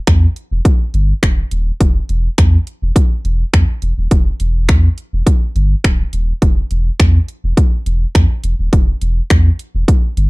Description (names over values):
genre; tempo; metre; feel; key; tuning
dance-pop; 104 BPM; 4/4; straight; E minor; A4 = 445 Hz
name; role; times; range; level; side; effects
warm sub bass; bass; 0.1-10.3 s; D1 to E2; -14 LUFS; equal; sidechain pumping
house drum kit; drums; 0.1-10.3 s; finger snaps, hi-hat, kick drum; -12 LUFS; equal; overdrive
room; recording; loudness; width
little or no reverb; dry, close 1970s-style studio recording; -12 LUFS; side -25 dB against mid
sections
0.0-10.3 A section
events
none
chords
none